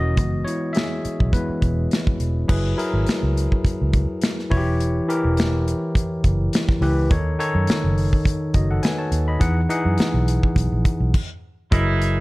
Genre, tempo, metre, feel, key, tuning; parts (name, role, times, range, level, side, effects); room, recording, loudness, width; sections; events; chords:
lush 1970s-style soul; 104 BPM; 4/4; swing 54% on 16ths; A4 = 440 Hz
barky tine electric piano; accompaniment; 0.0-12.2 s; D#3 to B5; -23 LUFS; left 1 dB; overdrive
vintage muted fingered electric bass; bass; 0.0-12.2 s; E1 to F#2; -21 LUFS; equal
modern studio drum kit; drums; 0.2-12.2 s; crash cymbal, hi-hat, kick drum, snare drum; -22 LUFS; equal
warm horn section; stabs; 11.7-12.2 s; E3 to E4; -24 LUFS; right 4 dB
studio reverb; -18 LUFS; side -21 dB against mid
0.0-2.5 A section; 2.5-11.7 B section
tine electric piano solo 0.0-2.5; stop 11.1-11.7
0.2 F#9sus4; 4.5 Em6; 7.1 F#m69; 9.4 Emaj9; 11.1 N.C.